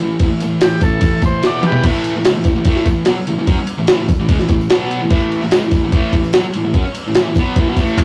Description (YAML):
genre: garage rock duo or trio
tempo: 147 BPM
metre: 4/4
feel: straight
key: A mixolydian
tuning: A4 = 443 Hz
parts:
  - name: fuzz guitar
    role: riff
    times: 0.0-8.0 s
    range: E2 to C#4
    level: -19 LUFS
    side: equal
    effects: distortion
  - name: tambourine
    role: percussion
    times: 0.0-8.0 s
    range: none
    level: -47 LUFS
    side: equal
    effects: none
  - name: jungle sampler-style drum kit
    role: drums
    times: 0.2-8.0 s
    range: crash cymbal, handclaps, kick drum, ride cymbal, snare drum, toms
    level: -17 LUFS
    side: equal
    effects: vintage 12-bit sampler grit
  - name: combo organ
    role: melody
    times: 0.6-1.9 s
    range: G4 to D5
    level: -23 LUFS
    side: equal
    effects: none
room: moderate stone room reverb, RT60 1.2 s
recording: rough rehearsal-room recording, tube saturation, cassette tape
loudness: -15 LUFS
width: mono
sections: 0.0-1.9 A section; 1.9-8.0 B section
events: transistor combo organ solo 0.0-1.9; drum fill 1.4-1.9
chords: 0.0 A5; 1.4 E5; 1.9 A5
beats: | 0.22 0.63 1.03 1.44 | 1.85 2.26 2.67 3.07 | 3.48 3.89 4.29 4.70 | 5.11 5.52 5.93 6.34 | 6.75 7.16 7.57 7.98